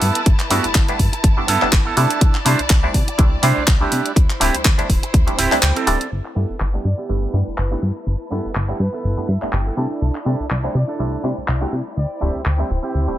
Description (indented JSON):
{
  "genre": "filtered disco house",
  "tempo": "123 BPM",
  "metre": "4/4",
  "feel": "swing 56% on 16ths",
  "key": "G major",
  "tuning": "A4 = 442 Hz",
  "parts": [
    { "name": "muted clav", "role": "accompaniment", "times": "0.0-13.2 s", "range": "G3 to E4", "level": "-24 LUFS", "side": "equal", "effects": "phaser, vintage 12-bit sampler grit, sidechain pumping, low-pass filter" },
    { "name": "clear symphonic violin section", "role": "sustained chords", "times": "0.0-13.2 s", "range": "E4 to A5", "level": "-29 LUFS", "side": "left 1 dB", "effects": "vintage 12-bit sampler grit, sidechain pumping, low-pass filter" },
    { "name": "electric guitar with an envelope filter", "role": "riff", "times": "0.0-13.2 s", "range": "B3 to G5", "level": "-24 LUFS", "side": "right 5 dB", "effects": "sidechain pumping, low-pass filter" },
    { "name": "plucky analog bass", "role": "bass", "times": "0.0-13.2 s", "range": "D1 to C3", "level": "-20 LUFS", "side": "equal", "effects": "tube saturation, sidechain pumping, low-pass filter" },
    { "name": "house drum kit", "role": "drums", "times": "0.0-12.6 s", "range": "handclaps, hi-hat", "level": "-22 LUFS", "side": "equal", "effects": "low-pass filter on hats, low-pass filter on snare, low-pass filter on room" },
    { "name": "electronic kick drum", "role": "drums", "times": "0.3-5.2 s", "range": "none", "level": "-15 LUFS", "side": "equal", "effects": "none" },
    { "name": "bright trumpet section", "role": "melody", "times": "6.8-12.3 s", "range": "B4 to D5", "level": "-33 LUFS", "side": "equal", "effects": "sidechain pumping, low-pass filter, ping-pong delay" }
  ],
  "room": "little or no reverb",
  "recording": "none",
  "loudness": "-16 LUFS",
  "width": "side -13 dB against mid",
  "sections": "0.0-6.1 A section; 6.1-13.2 B section",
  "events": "clean electric guitar fill 5.4-6.1, 9.0-10.0, 12.9; kick drops out 5.6-6.1",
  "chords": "0.0 G69; 2.0 C69; 4.2 D9sus4; 6.1 G69; 9.8 C69; 12.0 D9sus4"
}